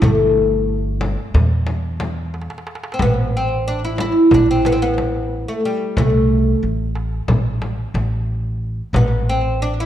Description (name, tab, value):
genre	Turkish makam ensemble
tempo	181 BPM (eighths)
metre	9/8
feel	straight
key	A makam huseyni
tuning	A4 = 440 Hz
part	oud	melody	0.0-9.9 s	G3 to E4	-17 LUFS	equal	slapback echo
part	upright bass	bass	0.0-9.9 s	G1 to E2	-20 LUFS	equal	none
part	darbuka	percussion	0.0-9.7 s	none	-24 LUFS	right 2 dB	none
part	frame drum	percussion	0.0-9.1 s	none	-24 LUFS	left 2 dB	none
room	moderate scoring stage reverb, RT60 1.8 s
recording	dark, warm production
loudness	-16 LUFS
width	side -11 dB against mid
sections	0.0-3.0 A section; 3.0-9.9 B section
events	drum fill 2.3-3.0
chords	none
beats	| 0.01 0.34 0.67 1.00 1.33 1.67 2.00 2.33 2.66 | 2.99 3.32 3.65 3.98 4.31 4.64 4.97 5.30 5.63 | 5.97 6.30 6.63 6.96 7.29 7.62 7.95 8.28 8.61 | 8.94 9.27 9.60